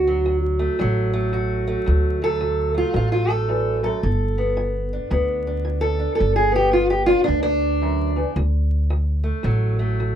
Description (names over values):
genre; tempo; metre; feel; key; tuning
acoustic country blues, solo or duo; 111 BPM; 4/4; swing 63% on 8ths; D major; A4 = 440 Hz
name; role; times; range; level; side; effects
fingerpicked steel-string acoustic guitar; melody; 0.0-10.2 s; D2 to A4; -21 LUFS; right 1 dB; none
upright bass; bass; 0.0-10.2 s; G1 to D2; -22 LUFS; equal; none
room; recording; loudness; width
light reverb; minimal, uncompressed stereo recording, vinyl crackle; -18 LUFS; side -9 dB against mid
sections
0.0-10.2 A section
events
none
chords
0.0 D; 4.0 G; 8.4 D